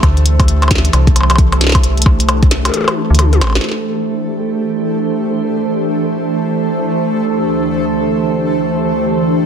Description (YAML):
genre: IDM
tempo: 133 BPM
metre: 4/4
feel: swing 62% on 16ths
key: unclear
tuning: A4 = 439 Hz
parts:
  - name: glassy FM pad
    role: sustained chords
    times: 0.0-9.5 s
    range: D2 to C5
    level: -17 LUFS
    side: right 1 dB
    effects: ensemble chorus, built-in reverb
  - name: metallic FM bass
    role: bass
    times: 0.0-3.6 s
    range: A1 to D2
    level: -12 LUFS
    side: equal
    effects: none
  - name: electronic kick drum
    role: drums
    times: 0.0-2.5 s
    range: none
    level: -12 LUFS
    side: equal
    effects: none
  - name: glitchy drum kit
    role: drums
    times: 0.0-3.8 s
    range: hi-hat, percussion blips, snare drum, toms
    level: -16 LUFS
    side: left 1 dB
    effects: none
  - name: bubbling stepped-filter texture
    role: texture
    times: 0.0-9.5 s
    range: A3 to A4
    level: -22 LUFS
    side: right 2 dB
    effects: chorus, built-in reverb
room: light reverb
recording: dense, heavily limited modern master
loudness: -12 LUFS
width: side -8 dB against mid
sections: 0.0-3.6 A section; 3.6-9.5 B section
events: kick drops out 2.7-3.6; drum fill 3.2-3.6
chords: 0.0 C69; 3.6 D5; 7.2 C6/D